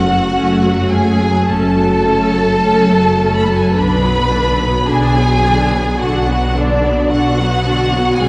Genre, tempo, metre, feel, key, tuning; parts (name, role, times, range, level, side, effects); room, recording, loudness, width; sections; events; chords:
classical, slow romantic movement for string orchestra; 53 BPM; 4/4; rubato; A4 = 439 Hz
rich studio violin section; melody; 0.0-8.3 s; D5 to B5; -22 LUFS; equal
warm studio violin section; second line; 0.0-8.3 s; D4 to B4; -20 LUFS; equal
rich studio viola section; accompaniment; 0.0-8.3 s; D3 to D4; -21 LUFS; equal
rich studio double bass section; bass; 0.0-8.3 s; F#1 to B1; -22 LUFS; equal
rich symphonic cello section; bass; 0.0-8.3 s; F#2 to B2; -21 LUFS; equal
wet concert hall reverb, RT60 2.3 s; recorded in a church or concert hall; -14 LUFS; mono
0.0-8.3 A section
0.0 F#m; 3.8 Bm